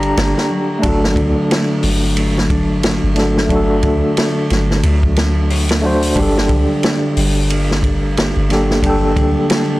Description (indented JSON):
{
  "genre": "trip hop",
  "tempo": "90 BPM",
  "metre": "4/4",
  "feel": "swing 59% on 16ths",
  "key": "G harmonic minor",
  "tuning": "A4 = 439 Hz",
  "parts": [
    { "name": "bright tine electric piano", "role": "accompaniment", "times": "0.0-9.8 s", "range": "A3 to Bb5", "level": "-17 LUFS", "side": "equal", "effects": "tremolo, tape echo" },
    { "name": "concert harp", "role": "arpeggios", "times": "0.0-9.8 s", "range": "D3 to G4", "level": "-21 LUFS", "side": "left 1 dB", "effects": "vintage 12-bit sampler grit, tape echo" },
    { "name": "soft 808-style bass", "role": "bass", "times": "0.0-9.3 s", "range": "G1 to D2", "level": "-18 LUFS", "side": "equal", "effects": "none" },
    { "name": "vintage drum kit", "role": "drums", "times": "0.0-9.7 s", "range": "hi-hat, kick drum, ride cymbal, snare drum", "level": "-18 LUFS", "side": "equal", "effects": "soft clipping on snare" }
  ],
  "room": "light reverb, small room ambience",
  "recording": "blown-out, overdriven recording, overdrive",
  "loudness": "-13 LUFS",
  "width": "side -18 dB against mid",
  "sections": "0.0-9.8 A section",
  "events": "none",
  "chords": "0.0 Gmadd9; 0.8 D/G; 6.2 Gmadd9"
}